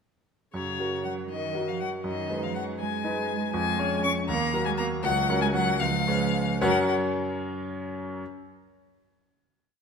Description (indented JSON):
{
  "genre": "quick classical-period movement for piano trio",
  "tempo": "73-81 BPM (dotted quarters)",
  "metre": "6/8",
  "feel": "straight",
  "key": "F# major",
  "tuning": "A4 = 445 Hz",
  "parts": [
    { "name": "rich violin", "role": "melody", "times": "0.5-6.9 s", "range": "C#5 to C#6", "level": "-29 LUFS", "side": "left 7 dB", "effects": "none" },
    { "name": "warm cello", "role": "second line", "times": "0.5-6.9 s", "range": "C#3 to C#4", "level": "-32 LUFS", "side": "right 6 dB", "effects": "none" },
    { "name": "clear concert grand piano", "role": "accompaniment", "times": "0.5-8.2 s", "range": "C#2 to C#5", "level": "-28 LUFS", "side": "equal", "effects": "none" }
  ],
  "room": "moderate scoring stage reverb, RT60 1.5 s",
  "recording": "none",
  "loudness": "-25 LUFS",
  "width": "side -6 dB against mid",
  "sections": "0.5-6.6 A section; 6.6-8.2 final chord",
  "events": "slowing down 2.8-6.6",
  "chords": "0.5 F#; 2.0 G#m7/F#; 3.5 C#/E#; 4.3 D#m; 5.0 F#/C#; 5.8 C#7; 6.6 F#"
}